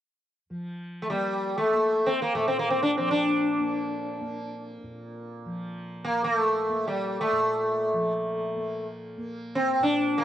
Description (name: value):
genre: indian classical, Hindustani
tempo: free time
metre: none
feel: none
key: Bb raga yaman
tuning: A4 = 439 Hz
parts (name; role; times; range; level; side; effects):
- tanpura; drone; 0.5-10.2 s; Bb2 to Bb3; -38 LUFS; equal; none
- sitar; melody; 1.0-10.2 s; G3 to D4; -24 LUFS; equal; cassette tape
room: light reverb, small room reverb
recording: home recording on cassette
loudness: -24 LUFS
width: side -11 dB against mid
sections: 0.5-10.2 A section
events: none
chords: none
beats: free time